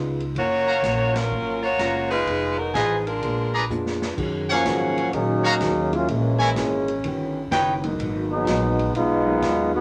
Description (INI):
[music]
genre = jazz, big band swing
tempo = 126 BPM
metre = 4/4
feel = swing 67% on 8ths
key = unclear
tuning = A4 = 438 Hz
[part]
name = vintage hollow-body jazz guitar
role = accompaniment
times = 0.0-9.8 s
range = F#2 to Ab4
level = -33 LUFS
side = equal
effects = none
[part]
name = warm concert grand piano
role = accompaniment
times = 0.0-9.8 s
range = E3 to E#4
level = -32 LUFS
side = equal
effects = none
[part]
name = upright bass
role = bass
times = 0.0-9.8 s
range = F1 to A#2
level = -31 LUFS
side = equal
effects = none
[part]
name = swinging big-band drum kit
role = drums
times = 0.2-9.6 s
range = crash cymbal, hi-hat, kick drum, ride cymbal, snare drum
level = -37 LUFS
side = equal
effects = none
[part]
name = clear saxophone section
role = melody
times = 0.4-3.7 s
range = F3 to C#5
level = -25 LUFS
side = equal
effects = none
[part]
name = bright trumpet section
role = stabs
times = 0.7-7.7 s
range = D#4 to A#5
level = -26 LUFS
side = equal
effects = none
[part]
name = clear trombone section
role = second line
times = 4.5-9.8 s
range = D#3 to F#4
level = -24 LUFS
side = equal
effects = none
[sound]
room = wet small room reverb, RT60 0.5 s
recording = none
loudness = -23 LUFS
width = mono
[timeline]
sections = 0.0-4.2 A section; 4.2-9.8 B section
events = band accent 1.1; drum fill 3.7-4.2; trombone section solo 4.2-9.8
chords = 0.4 F#maj7; 2.3 Fm7b5; 3.2 A#7b9; 4.2 D#m11; 6.1 A#m7b5; 7.0 D#7alt; 8.0 G#m7